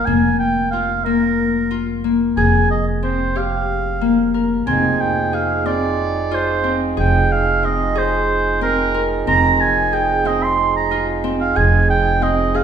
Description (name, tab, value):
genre	contemporary instrumental, contemporary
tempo	183 BPM (eighths)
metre	7/8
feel	straight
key	F minor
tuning	A4 = 440 Hz
part	warm oboe	melody	0.0-12.6 s	Bb4 to C6	-19 LUFS	right 3 dB	none
part	Celtic harp	arpeggios	0.0-12.6 s	Bb3 to Bb4	-20 LUFS	left 4 dB	none
part	upright bass	bass	0.0-12.6 s	F1	-22 LUFS	right 2 dB	none
part	pedal harmonium	sustained chords	4.7-12.6 s	F3 to Ab4	-23 LUFS	right 6 dB	none
room	wet recital hall reverb, RT60 1.4 s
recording	recorded in a church or concert hall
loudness	-15 LUFS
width	side -8 dB against mid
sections	0.0-4.7 A section; 4.7-12.6 B section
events	none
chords	0.0 Bb5/F; 2.4 Fmadd9; 4.7 Fm7